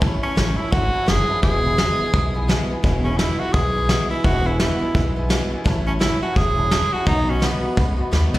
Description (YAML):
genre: rockabilly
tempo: 170 BPM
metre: 4/4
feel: swing 62% on 8ths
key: E major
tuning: A4 = 440 Hz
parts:
  - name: dark upright piano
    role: accompaniment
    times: 0.0-8.4 s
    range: B4 to B5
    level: -32 LUFS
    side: right 1 dB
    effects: slapback echo
  - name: picked swing-style acoustic guitar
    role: accompaniment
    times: 0.0-8.4 s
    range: E2 to F#4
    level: -28 LUFS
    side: left 2 dB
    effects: slapback echo
  - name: upright bass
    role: bass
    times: 0.0-8.4 s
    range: E1 to D#2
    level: -22 LUFS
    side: equal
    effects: none
  - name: soft brush drum kit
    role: drums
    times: 0.0-8.4 s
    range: hi-hat, kick drum, snare drum, toms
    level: -22 LUFS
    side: equal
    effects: none
  - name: bright tenor saxophone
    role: melody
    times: 0.2-8.0 s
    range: B3 to G#4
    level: -23 LUFS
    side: right 1 dB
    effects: slapback echo, tape echo
room: small room ambience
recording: live gig heard through the venue's PA, recital hall reverb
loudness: -17 LUFS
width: side -16 dB against mid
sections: 0.0-8.4 A section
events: drum fill 8.1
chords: 0.0 A; 1.4 E; 5.7 A; 7.1 B7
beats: | 0.02 0.37 0.72 1.08 | 1.43 1.78 2.13 2.48 | 2.84 3.19 3.54 3.89 | 4.25 4.60 4.95 5.30 | 5.65 6.01 6.36 6.71 | 7.06 7.42 7.77 8.12